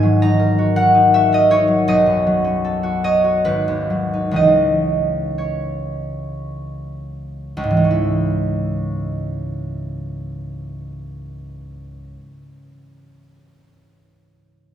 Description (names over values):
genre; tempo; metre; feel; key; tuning
classical, solo harp piece; 52-82 BPM; 3/4; rubato; C# dorian; A4 = 440 Hz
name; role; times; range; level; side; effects
concert harp; solo; 0.0-12.4 s; G#1 to A#5; -16 LUFS; equal; none
room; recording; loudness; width
wet recital hall reverb, RT60 1.6 s; recorded in a church or concert hall; -15 LUFS; side -10 dB against mid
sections
0.0-7.6 A section; 7.6-10.8 B section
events
slowing down 0.8-7.6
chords
0.0 F#13/G#; 1.9 B9; 3.5 G#m7; 4.4 C#madd9; 7.6 C#m